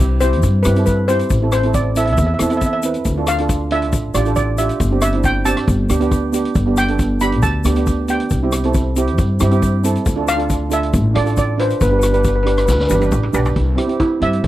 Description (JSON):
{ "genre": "calypso", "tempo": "137 BPM", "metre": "4/4", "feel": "straight", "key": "C major", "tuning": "A4 = 436 Hz", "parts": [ { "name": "steel pan", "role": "melody", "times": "0.0-14.5 s", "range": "E4 to B5", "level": "-20 LUFS", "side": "equal", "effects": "none" }, { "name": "steel pan", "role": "accompaniment", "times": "0.0-14.5 s", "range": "B3 to B4", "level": "-20 LUFS", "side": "right 4 dB", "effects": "none" }, { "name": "upright bass", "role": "bass", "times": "0.0-14.5 s", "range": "G1 to G2", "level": "-18 LUFS", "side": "equal", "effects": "none" }, { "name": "tube shaker", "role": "percussion", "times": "0.0-13.5 s", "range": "none", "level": "-31 LUFS", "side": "left 18 dB", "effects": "none" }, { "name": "street-band drum kit", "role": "drums", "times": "0.2-14.5 s", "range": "hi-hat, kick drum, rim click, snare drum, toms", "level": "-22 LUFS", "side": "left 1 dB", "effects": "none" } ], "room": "small room reverb", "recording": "dry, close 1970s-style studio recording", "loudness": "-14 LUFS", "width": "side -14 dB against mid", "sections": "0.0-13.6 A section", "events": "drum fill 12.7-13.6", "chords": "0.0 C; 1.3 Am; 3.1 Dm; 4.8 Gsus4; 5.7 Gadd9; 6.6 G; 8.3 C; 10.1 Dmadd9; 11.8 G; 13.6 C" }